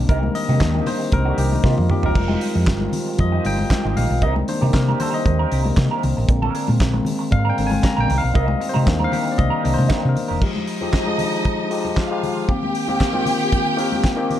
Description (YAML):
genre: disco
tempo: 116 BPM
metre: 4/4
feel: straight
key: C minor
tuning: A4 = 444 Hz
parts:
  - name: barky tine electric piano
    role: accompaniment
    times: 0.0-14.4 s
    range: D3 to Bb5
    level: -23 LUFS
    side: left 3 dB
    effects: low-pass filter
  - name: mellow French horn section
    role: sustained chords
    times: 0.0-10.4 s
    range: C3 to G4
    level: -28 LUFS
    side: right 1 dB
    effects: none
  - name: hollow-body short-scale fingered electric bass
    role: bass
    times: 0.0-10.4 s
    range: E1 to C3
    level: -20 LUFS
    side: equal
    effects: none
  - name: electric guitar at the edge of break-up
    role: accompaniment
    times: 0.1-10.4 s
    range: Ab3 to Bb4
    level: -28 LUFS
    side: right 7 dB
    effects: wah, harmonic tremolo
  - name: damped 70s drum kit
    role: drums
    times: 0.1-14.4 s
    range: crash cymbal, handclaps, hi-hat, kick drum, snare drum, toms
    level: -22 LUFS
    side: equal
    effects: none
  - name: congas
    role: percussion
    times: 0.2-14.4 s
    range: none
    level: -29 LUFS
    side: left 4 dB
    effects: none
  - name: rich studio violin section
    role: second line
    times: 10.4-14.4 s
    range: Eb4 to G5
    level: -24 LUFS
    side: right 2 dB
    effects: none
room: light reverb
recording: dark, warm production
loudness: -17 LUFS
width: side -11 dB against mid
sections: 0.0-10.4 A section; 10.4-14.4 B section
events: tine electric piano solo 0.0-10.4; drum fill 1.6-2.2; filter sweep on tine electric piano 10.4-14.4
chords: 0.0 Cm7; 2.2 Fm9; 4.2 Cm7; 6.3 Bb7; 8.1 Cm7; 10.4 Fm9; 12.5 Cm7